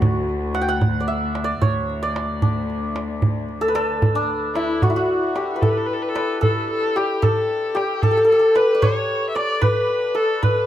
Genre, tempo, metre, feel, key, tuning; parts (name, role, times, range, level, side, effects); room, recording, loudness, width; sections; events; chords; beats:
Persian modal ensemble; 75 BPM (dotted quarters); 6/8; straight; D dastgah mahur; A4 = 440 Hz
santur; melody; 0.0-10.7 s; D4 to G5; -20 LUFS; equal
rich chamber cello section; drone; 0.0-4.9 s; D2; -27 LUFS; left 2 dB
tombak; percussion; 0.0-10.6 s; -21 LUFS; right 2 dB
clear kamancheh; second line; 4.5-10.7 s; E4 to E5; -24 LUFS; left 3 dB
moderate small room reverb, RT60 0.6 s; -18 LUFS; side -11 dB against mid
0.0-4.8 A section; 4.8-10.7 B section
| 0.02 0.82 | 1.62 2.42 | 3.22 4.02 | 4.82 5.62 | 6.42 7.22 | 8.02 8.82 | 9.62 10.42